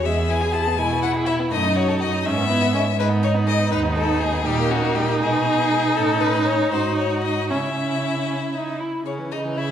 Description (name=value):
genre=quick classical-period movement for string quartet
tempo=80 BPM (dotted quarters)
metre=6/8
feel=straight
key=C# minor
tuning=A4 = 441 Hz
part: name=rich violin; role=melody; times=0.0-9.7 s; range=F#4 to A5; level=-24 LUFS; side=left 7 dB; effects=none
part: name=rich violin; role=second line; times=0.0-9.7 s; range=G3 to A4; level=-28 LUFS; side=left 1 dB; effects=none
part: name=warm viola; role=accompaniment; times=0.0-9.7 s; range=C#3 to G#4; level=-23 LUFS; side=right 2 dB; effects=none
part: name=warm cello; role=bass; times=0.0-9.7 s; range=D#2 to C#3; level=-24 LUFS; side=right 3 dB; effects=none
room=wet recital hall reverb, RT60 1.8 s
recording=recorded in a church or concert hall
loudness=-18 LUFS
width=side -9 dB against mid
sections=0.0-9.1 A section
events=none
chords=0.0 E; 1.5 D#dim/F#; 2.2 E/G#; 3.0 G#m; 4.5 Gm/Bb; 5.2 G#m/B; 6.0 A; 6.7 G#5; 7.5 C#m